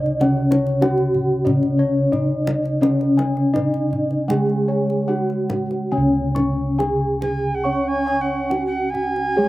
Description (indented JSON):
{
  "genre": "Javanese gamelan",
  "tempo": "70-100 BPM",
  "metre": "4/4",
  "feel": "straight",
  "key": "unclear",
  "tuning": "A4 = 441 Hz",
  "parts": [
    { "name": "gamelan-type bronze metallophone", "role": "melody", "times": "0.0-9.5 s", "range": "C#4 to C#5", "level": "-22 LUFS", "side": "left 1 dB", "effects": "none" },
    { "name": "gamelan-type bronze metallophone", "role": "accompaniment", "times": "0.0-9.5 s", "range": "C#3 to C#4", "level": "-24 LUFS", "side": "right 1 dB", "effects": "none" },
    { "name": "gamelan-type bronze metallophone", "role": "arpeggios", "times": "0.0-9.5 s", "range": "C#5 to C#6", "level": "-30 LUFS", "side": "right 2 dB", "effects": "slapback echo" },
    { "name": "gamelan-type bossed gongs", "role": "bass", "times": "0.0-9.5 s", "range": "C#2 to G#4-40c", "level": "-24 LUFS", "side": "equal", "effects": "none" },
    { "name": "kendang", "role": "percussion", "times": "0.1-9.3 s", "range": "none", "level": "-29 LUFS", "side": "left 1 dB", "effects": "none" },
    { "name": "gamelan-type bossed gongs", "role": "arpeggios", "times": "0.2-9.5 s", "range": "C#5 to C#6", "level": "-28 LUFS", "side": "left 2 dB", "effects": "slapback echo" },
    { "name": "mellow alto recorder", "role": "second line", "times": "7.2-9.5 s", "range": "F#5+27c to G#5-38c", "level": "-24 LUFS", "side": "right 3 dB", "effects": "slapback echo" }
  ],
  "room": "little or no reverb",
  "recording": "recorded outdoors, with no room sound",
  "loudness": "-17 LUFS",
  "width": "side -17 dB against mid",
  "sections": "0.0-5.9 A section; 5.9-9.5 B section",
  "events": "none",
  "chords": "none"
}